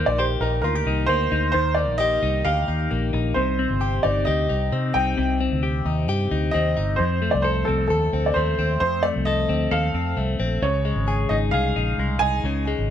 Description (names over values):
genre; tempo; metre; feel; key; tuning
jangly indie pop; 132 BPM; 4/4; straight; F mixolydian; A4 = 440 Hz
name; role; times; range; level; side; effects
warm upright piano; melody; 0.0-12.6 s; A4 to Ab5; -24 LUFS; right 1 dB; none
direct-recorded clean electric guitar; arpeggios; 0.0-12.9 s; F2 to A4; -25 LUFS; left 5 dB; phaser, digital delay
vintage muted fingered electric bass; bass; 0.1-12.9 s; G1 to C3; -24 LUFS; right 1 dB; none
room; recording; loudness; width
light reverb; none; -20 LUFS; side -10 dB against mid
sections
0.0-12.9 A section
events
none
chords
0.0 Eb; 3.4 Cm; 7.0 F; 10.6 Dbadd9